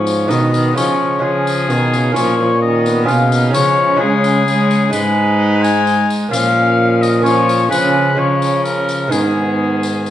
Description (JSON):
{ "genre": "classical, renaissance-style consort dance", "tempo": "129 BPM", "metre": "3/4", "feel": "straight", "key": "unclear", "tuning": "A4 = 440 Hz", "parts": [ { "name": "clear oboe", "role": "melody", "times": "0.0-10.1 s", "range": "G#4 to G#5", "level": "-17 LUFS", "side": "left 4 dB", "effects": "none" }, { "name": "warm violin", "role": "second line", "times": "0.0-10.1 s", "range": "A#3 to D#4", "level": "-24 LUFS", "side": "right 4 dB", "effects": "none" }, { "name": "lute", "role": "accompaniment", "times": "0.0-10.1 s", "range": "G#2 to G#4", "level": "-20 LUFS", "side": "right 3 dB", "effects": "none" }, { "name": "rich viola", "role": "accompaniment", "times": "0.0-10.1 s", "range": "C#3 to G#3", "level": "-20 LUFS", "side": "left 2 dB", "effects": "none" }, { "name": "warm trombone", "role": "bass", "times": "0.0-10.1 s", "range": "G#2 to C#3", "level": "-17 LUFS", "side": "right 1 dB", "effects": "none" }, { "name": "tambourine", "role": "percussion", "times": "0.1-10.1 s", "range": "none", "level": "-29 LUFS", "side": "left 4 dB", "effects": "none" } ], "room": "wet stone room reverb, RT60 1.2 s", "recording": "heard from further back in the room, nothing above 11.0 kHz", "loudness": "-12 LUFS", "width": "side -12 dB against mid", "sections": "0.0-10.1 A section", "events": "none", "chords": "0.0 G#m; 0.8 C#; 2.2 A#m; 3.5 C#; 4.9 G#m; 6.3 A#m; 7.7 C#; 9.1 G#m" }